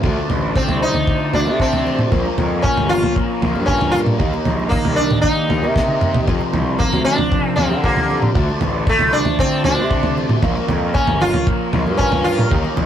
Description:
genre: psychedelic rock.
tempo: 116 BPM.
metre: 4/4.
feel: straight.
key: unclear.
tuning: A4 = 440 Hz.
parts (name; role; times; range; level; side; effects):
tonewheel organ; sustained chords; 0.0-12.9 s; F4 to Bb5; -30 LUFS; equal; slow rotary speaker, chorus vibrato.
fuzz guitar; riff; 0.0-12.9 s; F2 to Eb4; -22 LUFS; left 1 dB; distortion, phaser.
fuzz picked electric bass; bass; 0.0-12.9 s; G1 to D3; -22 LUFS; equal; overdrive.
tanpura; drone; 0.0-4.5 s; none; barely audible; none; none.
damped 70s drum kit; drums; 0.0-12.9 s; kick drum, snare drum, toms; -20 LUFS; equal; none.
congas; percussion; 0.0-12.9 s; none; -33 LUFS; right 4 dB; none.
sitar; melody; 0.6-12.5 s; A3 to F4; -20 LUFS; equal; none.
room: light reverb.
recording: rough rehearsal-room recording.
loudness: -15 LUFS.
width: side -10 dB against mid.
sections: 0.0-12.9 A section.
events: drum fill 5.8-6.3.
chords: 0.0 Dm7; 2.1 Bbm; 4.2 Eb; 6.3 Fsus4; 8.4 Dm7; 10.4 Bbm.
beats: | 0.05 0.56 1.08 1.60 | 2.12 2.64 3.16 3.68 | 4.20 4.72 5.24 5.76 | 6.28 6.79 7.31 7.83 | 8.35 8.87 9.39 9.91 | 10.43 10.95 11.47 11.99 | 12.51.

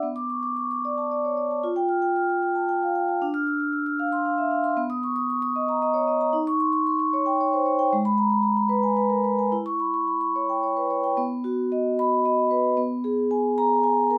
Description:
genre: classical, contemporary piece for solo vibraphone.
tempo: 114 BPM.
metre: 3/4.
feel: straight.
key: B major from 4.8 s.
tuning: A4 = 442 Hz.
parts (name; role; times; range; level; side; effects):
vibraphone with soft mallets; solo; 0.0-14.2 s; G#3 to F6; -24 LUFS; equal; none.
room: light reverb.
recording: none.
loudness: -24 LUFS.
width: mono.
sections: 0.0-11.2 A section; 11.2-14.2 B section.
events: none.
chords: 0.0 Bm7; 1.6 Fadd9; 3.2 Dm7; 4.8 Bmaj7; 6.3 D#7; 7.9 G#madd9; 9.5 Em6; 11.2 B; 12.8 G#madd9/B.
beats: | 0.04 0.57 1.11 | 1.64 2.16 2.69 | 3.22 3.74 4.27 | 4.78 5.30 5.82 | 6.34 6.86 7.39 | 7.92 8.44 8.97 | 9.52 10.08 10.63 | 11.18 11.71 12.25 | 12.78 13.31 13.83.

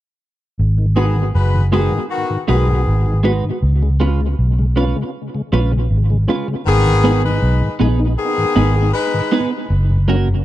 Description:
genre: reggae.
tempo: 79 BPM.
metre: 4/4.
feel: straight.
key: G# dorian.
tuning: A4 = 441 Hz.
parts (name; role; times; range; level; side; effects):
vintage muted fingered electric bass; bass; 0.6-10.4 s; F#1 to C#2; -15 LUFS; equal; none.
mellow tonewheel organ; accompaniment; 0.8-10.4 s; F#2 to F#4; -23 LUFS; left 2 dB; chorus vibrato, tape echo.
clear horn section; second line; 1.0-9.5 s; D#3 to B4; -19 LUFS; left 3 dB; tape echo.
semi-hollow electric guitar; accompaniment; 1.0-10.3 s; G#3 to B4; -20 LUFS; right 4 dB; analog chorus, tape echo.
room: little or no reverb.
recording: dry, close 1970s-style studio recording.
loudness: -14 LUFS.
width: side -14 dB against mid.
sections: 0.6-6.7 A section; 6.7-10.4 B section.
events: none.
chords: 0.6 G#m7; 3.6 C#7; 6.7 G#m; 9.7 F#.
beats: | 0.59 1.35 2.10 2.87 | 3.62 4.38 5.14 5.90 | 6.66 7.42 8.18 8.94 | 9.70.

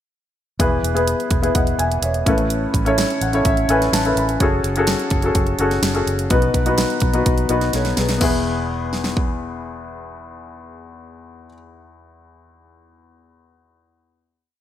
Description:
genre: piano-driven pop.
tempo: 126 BPM.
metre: 4/4.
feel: straight.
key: E major.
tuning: A4 = 440 Hz.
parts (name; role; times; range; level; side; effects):
warm baby grand piano; accompaniment; 0.6-14.5 s; E2 to B5; -20 LUFS; left 2 dB; none.
vintage muted fingered electric bass; bass; 0.6-11.5 s; E1 to B1; -24 LUFS; right 1 dB; none.
pop drum kit; drums; 0.6-9.3 s; crash cymbal, hi-hat, kick drum, snare drum; -21 LUFS; right 1 dB; none.
room: moderate plate reverb, RT60 2.0 s, digital ambience.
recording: bright 1980s-style digital production.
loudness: -16 LUFS.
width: side -11 dB against mid.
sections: 0.6-8.2 verse; 8.2-12.0 final chord.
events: grand piano fill 3.0-4.4; drum fill 7.7-8.2.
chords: 0.6 E; 2.3 Aadd9; 4.4 F#madd9; 6.3 B; 8.2 E.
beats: | 0.60 1.07 1.55 2.03 | 2.50 2.98 3.46 3.93 | 4.41 4.88 5.36 5.84 | 6.31 6.79 7.27 7.74 | 8.22 8.70 9.17 9.65 | 10.12 10.60 11.08 11.55.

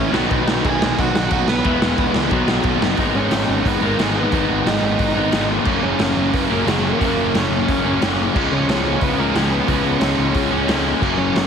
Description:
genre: punk rock.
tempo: 179 BPM.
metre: 4/4.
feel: straight.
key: unclear.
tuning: A4 = 437 Hz.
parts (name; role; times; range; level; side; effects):
biting lead guitar; melody; 0.0-11.5 s; G#3 to G#5; -24 LUFS; right 3 dB; overdrive.
crunchy overdriven guitar; riff; 0.0-11.5 s; F#2 to E4; -22 LUFS; left 15 dB; none.
crunchy overdriven guitar; riff; 0.0-3.0 s; E2 to B3; -24 LUFS; right 2 dB; none.
tight distorted guitar; riff; 0.0-11.5 s; F#2 to E4; -22 LUFS; right 16 dB; distortion.
fuzz picked electric bass; bass; 0.0-11.5 s; E1 to C#2; -24 LUFS; equal; overdrive.
raw garage drum kit; drums; 0.1-11.4 s; crash cymbal, hi-hat, kick drum, snare drum; -22 LUFS; equal; none.
room: light reverb.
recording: heavily compressed radio sound.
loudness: -16 LUFS.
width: side -7 dB against mid.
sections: 0.0-3.0 A section; 3.0-11.5 B section.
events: half time 3.0-11.5.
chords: 0.1 B; 1.6 E; 2.3 B; 3.0 G#m; 5.7 F#; 8.3 C#.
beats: | 0.30 0.64 0.97 1.31 | 1.64 1.98 2.31 2.65 | 2.98 3.32 3.65 3.99 | 4.33 4.66 5.00 5.33 | 5.67 6.00 6.34 6.67 | 7.01 7.34 7.68 8.01 | 8.35 8.68 9.02 9.35 | 9.68 10.02 10.35 10.69 | 11.02 11.35.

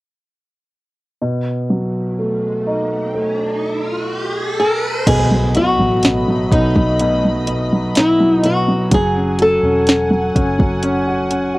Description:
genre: pop ballad.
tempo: 62 BPM.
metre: 4/4.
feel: straight.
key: unclear.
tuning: A4 = 440 Hz.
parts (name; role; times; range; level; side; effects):
warm concert grand piano; accompaniment; 1.2-11.6 s; B2 to F#4; -18 LUFS; equal; cassette tape.
riser and impact; sound effects; 2.3-8.9 s; none; -25 LUFS; equal; none.
flamenco guitar; melody; 4.6-11.3 s; D#4 to A4; -17 LUFS; left 1 dB; cassette tape.
warm studio string section; sustained chords; 5.1-11.6 s; A3 to B5; -27 LUFS; equal; cassette tape.
vintage muted fingered electric bass; bass; 5.1-11.6 s; E1 to B1; -24 LUFS; equal; none.
smooth R&B drum kit; drums; 5.1-11.5 s; crash cymbal, hi-hat, kick drum, snare drum; -16 LUFS; equal; cassette tape.
room: moderate booth ambience, RT60 0.2 s.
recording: home recording on cassette.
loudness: -14 LUFS.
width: side -20 dB against mid.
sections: 1.2-5.1 A section; 5.1-11.6 B section.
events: riser 2.3-5.1; impact 5.1-8.9.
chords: 1.2 B7; 8.9 F#madd9.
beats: | 1.22 2.19 3.15 4.11 | 5.07 6.04 7.00 7.96 | 8.92 9.88 10.84.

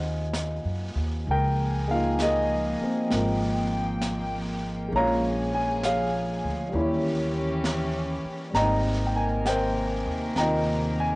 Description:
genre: jazz ballad.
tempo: 66 BPM.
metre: 4/4.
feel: swing 67% on 8ths.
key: Ab major.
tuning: A4 = 440 Hz.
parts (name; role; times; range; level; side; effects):
warm concert grand piano; accompaniment; 0.0-11.2 s; G3 to Bb5; -26 LUFS; equal; none.
upright bass; bass; 0.0-11.2 s; Ab1 to Gb2; -29 LUFS; equal; tube saturation.
vintage brush drum kit; drums; 0.3-11.2 s; brushed snare drum, hi-hat, snare drum; -36 LUFS; equal; none.
warm chamber string section; sustained chords; 1.3-11.2 s; C3 to G5; -31 LUFS; equal; none.
room: light reverb, small room ambience.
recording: home recording on cassette, nothing above 10.8 kHz.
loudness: -24 LUFS.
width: side -23 dB against mid.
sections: 0.0-11.2 A section.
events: none.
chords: 0.0 Ab9; 1.3 Db6; 4.9 Bbm7; 6.7 Eb7b9; 8.5 Abmaj9.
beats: 0.34 | 1.27 2.19 3.11 4.02 | 4.93 5.83 6.73 7.63 | 8.54 9.45 10.36.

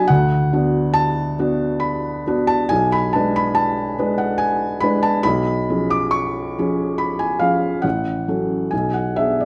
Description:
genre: classical, romantic nocturne for solo piano.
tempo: 70 BPM.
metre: 3/4.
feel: uneven beats, rubato.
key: unclear.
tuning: A4 = 442 Hz.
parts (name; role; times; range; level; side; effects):
felt-muted upright piano; solo; 0.0-9.4 s; A1 to D6; -19 LUFS; equal; none.
room: moderate recital hall reverb, RT60 1.3 s.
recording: none.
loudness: -20 LUFS.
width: mono.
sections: 0.0-9.4 A section.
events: none.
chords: 0.1 Bm/D; 2.7 G#dim/B; 5.2 C#7/B; 7.8 F#m/A; 8.7 G#dim/B.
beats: | 0.09 0.96 1.81 | 2.71 3.57 4.40 | 5.24 6.14 7.01 | 7.84 8.72.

